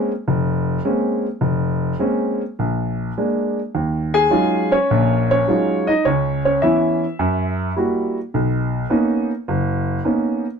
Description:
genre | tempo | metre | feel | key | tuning
solo jazz | 105 BPM | 4/4 | swing 67% on 8ths, rubato | Bb minor, Eb minor from 3.8 s | A4 = 441 Hz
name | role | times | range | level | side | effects
warm upright piano | solo | 0.0-10.4 s | F1 to Ab5 | -17 LUFS | equal | none
room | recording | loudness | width
light reverb | close, detailed microphones | -17 LUFS | side -6 dB against mid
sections
0.0-3.8 A section; 3.8-10.6 B section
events
none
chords
0.0 Bbm9; 2.6 Bb7; 3.8 Ebm11; 6.1 Dbm7; 7.2 Gb7b9; 8.3 Bmaj9

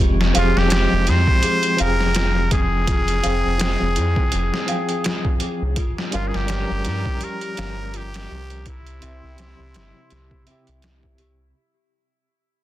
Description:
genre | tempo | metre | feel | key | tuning
trip hop | 83 BPM | 4/4 | swing 57% on 16ths | F harmonic minor | A4 = 440 Hz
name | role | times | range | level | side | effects
overdriven tine electric piano | accompaniment | 0.0-11.6 s | C3 to G5 | -26 LUFS | equal | tremolo
celesta | arpeggios | 0.0-11.6 s | E4 to F5 | -30 LUFS | left 2 dB | ping-pong delay
round analog bass | bass | 0.0-11.5 s | F1 to G2 | -22 LUFS | equal | none
trip hop sampler-style drum kit | drums | 0.2-11.4 s | hi-hat, kick drum, snare drum | -23 LUFS | equal | overdrive
trumpet with straight mute | melody | 0.4-10.8 s | E4 to C5 | -25 LUFS | equal | tape echo
dark analog pad | sustained chords | 6.1-11.5 s | G4 to C6 | -42 LUFS | left 1 dB | chorus
room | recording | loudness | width
little or no reverb | dense, heavily limited modern master | -17 LUFS | side -14 dB against mid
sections
0.0-11.6 A section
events
fade-out 0.0-11.6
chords
0.0 Fmadd9; 5.8 Gm7b5; 8.7 C

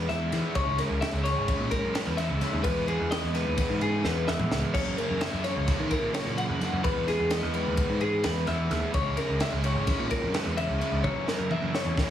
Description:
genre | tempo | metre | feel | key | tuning
math rock and midwest emo | 257 BPM (eighths) | 9/8 | straight | E lydian | A4 = 440 Hz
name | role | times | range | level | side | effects
twelve-string electric guitar | arpeggios | 0.0-12.1 s | G#4 to F#5 | -31 LUFS | left 3 dB | none
overdriven semi-hollow guitar | riff | 0.0-12.1 s | F#2 to E4 | -32 LUFS | right 3 dB | none
picked electric bass | bass | 0.0-12.0 s | G#1 to E3 | -30 LUFS | equal | none
crisp fusion drum kit | drums | 0.1-12.1 s | crash cymbal, kick drum, ride cymbal, snare drum, toms | -31 LUFS | equal | none
room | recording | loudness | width
light reverb | heavily compressed radio sound, studio reverb | -25 LUFS | side -10 dB against mid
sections
0.0-12.1 A section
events
drum fill 4.0-4.7, 11.0-12.1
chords
0.0 E; 0.6 C#m; 2.6 Emaj7; 4.7 F#7; 6.8 Emaj7; 8.9 C#m; 11.0 F#7

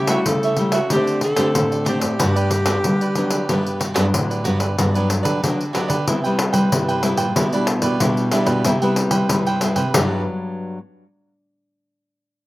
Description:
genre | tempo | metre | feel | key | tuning
samba and choro | 93 BPM | 4/4 | straight | G major | A4 = 440 Hz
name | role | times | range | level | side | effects
mellow alto saxophone | melody | 0.0-4.1 s | F#4 to A4 | -23 LUFS | equal | none
cavaquinho | accompaniment | 0.0-10.2 s | D4 to G5 | -24 LUFS | right 4 dB | slapback echo
nylon-string guitar | accompaniment | 0.0-10.8 s | G2 to G4 | -22 LUFS | left 1 dB | none
nylon-string guitar | bass | 0.0-10.3 s | G2 to G3 | -23 LUFS | equal | none
pandeiro | percussion | 0.1-10.1 s | none | -22 LUFS | left 2 dB | none
room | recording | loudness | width
little or no reverb | recorded outdoors, with no room sound | -17 LUFS | side -17 dB against mid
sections
0.0-4.8 A section; 4.8-10.0 B section; 10.0-12.5 C section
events
none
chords
0.0 A7/C#; 0.9 D7sus4; 2.2 Gmaj7; 6.1 Cmaj7; 7.4 Em7/B; 8.7 Cmaj7; 10.0 Gmaj7

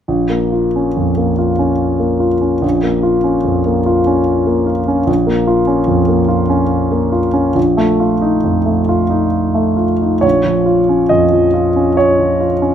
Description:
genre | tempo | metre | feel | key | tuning
classical, romantic character piece for solo piano | 64-76 BPM | 3/4 | rubato | Bb minor | A4 = 442 Hz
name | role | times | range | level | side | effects
warm concert grand piano | solo | 0.1-12.7 s | Bb1 to Eb5 | -12 LUFS | equal | none
room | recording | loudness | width
moderate large studio reverb, RT60 1.4 s | close, detailed microphones | -12 LUFS | side -9 dB against mid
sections
0.1-10.2 A section; 10.2-12.7 B section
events
none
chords
0.1 Bbm; 7.6 F7/Bb; 10.2 Bbm

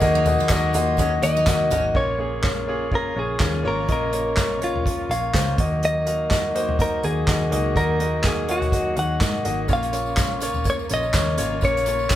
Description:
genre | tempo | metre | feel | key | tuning
piano-driven pop | 124 BPM | 4/4 | swing 56% on 16ths | Bb minor | A4 = 441 Hz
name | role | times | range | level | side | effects
bright grand piano | accompaniment | 0.0-12.2 s | Bb2 to F5 | -24 LUFS | left 1 dB | none
dark studio string section | sustained chords | 0.0-12.2 s | Db3 to Bb4 | -37 LUFS | left 2 dB | none
vintage muted picked electric bass | bass | 0.0-12.2 s | Ab1 to Ab2 | -27 LUFS | equal | none
unplugged drum kit | drums | 0.0-12.2 s | handclaps, hi-hat, kick drum, snare drum, toms | -24 LUFS | equal | none
tambourine | percussion | 0.0-1.8, 9.7-12.2 s | none | -38 LUFS | left 4 dB | none
picked steel-string acoustic guitar | riff | 0.2-1.8 s | Db4 to F4 | -31 LUFS | right 4 dB | none
direct-recorded clean electric guitar | melody | 1.2-12.2 s | F4 to Gb5 | -26 LUFS | left 1 dB | none
room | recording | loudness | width
moderate studio reverb, RT60 0.7 s | band playing live in one room | -19 LUFS | side -12 dB against mid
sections
0.0-2.0 A section; 2.0-12.2 B section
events
none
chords
0.0 Ebm; 2.0 Bbm; 5.6 Ebm; 9.7 Bbm

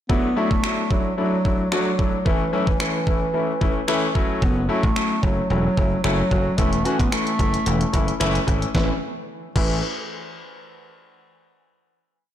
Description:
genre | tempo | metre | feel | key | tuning
dance-pop | 111 BPM | 4/4 | straight | A major | A4 = 439 Hz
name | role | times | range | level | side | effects
warm bass clarinet | melody | 0.1-9.8 s | E3 to C#4 | -25 LUFS | right 1 dB | dub echo
clear baby grand piano | accompaniment | 0.1-9.8 s | E3 to B5 | -24 LUFS | left 2 dB | sidechain pumping
detuned 8-bit digital drum machine | drums | 0.1-9.7 s | crash cymbal, finger snaps, hi-hat, kick drum, snare drum | -23 LUFS | equal | soft clipping on snare
dry thumbed slap bass | bass | 4.4-9.8 s | E1 to A1 | -24 LUFS | equal | sidechain pumping
room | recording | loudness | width
light reverb | blown-out, overdriven recording, overdrive | -19 LUFS | side -11 dB against mid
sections
0.1-8.7 verse; 8.7-10.9 final chord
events
grand piano fill 7.7-8.7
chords
0.1 Dadd9; 2.3 A; 4.2 F#m7; 6.6 A/E; 8.7 A

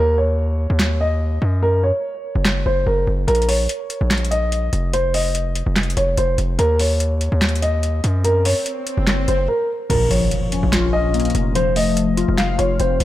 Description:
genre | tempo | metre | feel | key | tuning
hip hop, trap | 145 BPM | 4/4 | half-time | Bb harmonic minor | A4 = 441 Hz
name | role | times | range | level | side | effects
dark concert grand piano | melody | 0.0-13.0 s | Bb4 to Eb5 | -21 LUFS | equal | none
distorted 808-style bass | bass | 0.0-13.0 s | F1 to Gb2 | -19 LUFS | equal | distortion
booming analog drum machine | drums | 0.8-13.0 s | crash cymbal, handclaps, hi-hat, snare drum | -23 LUFS | equal | none
swell and impact | sound effects | 8.2-11.6 s | none | -28 LUFS | equal | none
glassy digital keys | accompaniment | 9.9-13.0 s | Bb2 to F5 | -20 LUFS | left 4 dB | chorus
room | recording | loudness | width
light reverb, digital ambience | none | -16 LUFS | side -14 dB against mid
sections
0.0-9.9 A section; 9.9-13.0 B section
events
break 0.0-3.3, 9.5-9.9; swell 8.2-9.9; impact 9.9-11.6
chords
0.0 Ebm; 1.6 Gb5; 3.3 Bbm; 4.9 Dbmaj9/F (rootless); 6.6 Ebm; 8.2 Gb5; 9.9 Bbm; 11.6 F

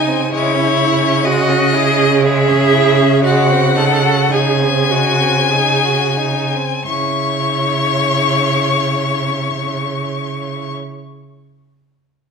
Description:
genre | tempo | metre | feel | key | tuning
classical, slow romantic movement for string quartet | 43-66 BPM | 3/4 | rubato | C# minor | A4 = 440 Hz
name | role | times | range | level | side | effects
rich violin | melody | 0.0-10.7 s | C#5 to C#6 | -17 LUFS | left 7 dB | none
clear violin | second line | 0.0-10.7 s | G#3 to C#5 | -22 LUFS | left 3 dB | none
clear viola | accompaniment | 0.0-10.7 s | D#4 to A4 | -19 LUFS | right 3 dB | none
warm cello | bass | 0.0-10.7 s | C#3 | -18 LUFS | right 5 dB | none
room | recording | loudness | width
moderate recital hall reverb, RT60 1.4 s | minimal, uncompressed stereo recording | -12 LUFS | side -5 dB against mid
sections
0.0-6.9 A section; 6.9-10.8 B section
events
slowing down 0.0-6.9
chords
0.3 C#m; 3.2 G#7/C#; 6.9 C#m

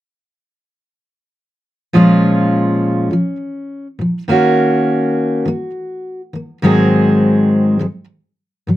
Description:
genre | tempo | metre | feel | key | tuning
pop | 102 BPM | 4/4 | swing 55% on 16ths | Bb minor | A4 = 440 Hz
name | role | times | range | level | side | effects
fingerpicked steel-string acoustic guitar | accompaniment | 1.9-8.8 s | Ab2 to Ab4 | -12 LUFS | equal | none
room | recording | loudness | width
light reverb | close, detailed microphones | -12 LUFS | side -14 dB against mid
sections
1.9-8.8 A section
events
none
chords
1.9 Bbm7; 4.3 Ebm7; 6.6 Ab7

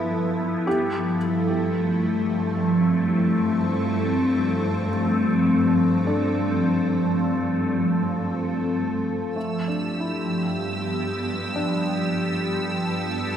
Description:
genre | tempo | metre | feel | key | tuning
ambient | free time | none | none | G mixolydian | A4 = 440 Hz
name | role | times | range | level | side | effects
evolving wavetable pad | sustained chords | 0.0-13.4 s | F3 to A4 | -22 LUFS | equal | ensemble chorus, built-in reverb, phaser
felt-muted upright piano | arpeggios | 0.0-13.4 s | A3 to B4 | -31 LUFS | left 1 dB | diffuse ambient delay
warm studio cello section | bass | 0.0-13.4 s | G2 | -30 LUFS | equal | none
clear studio violin section | texture | 9.4-13.4 s | E6 | -32 LUFS | right 2 dB | none
room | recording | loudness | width
wet lush hall reverb, RT60 2.8 s | none | -21 LUFS | side -9 dB against mid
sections
0.0-9.4 A section; 9.4-13.4 B section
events
none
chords
0.0 G13; 0.7 F/G; 9.4 G9

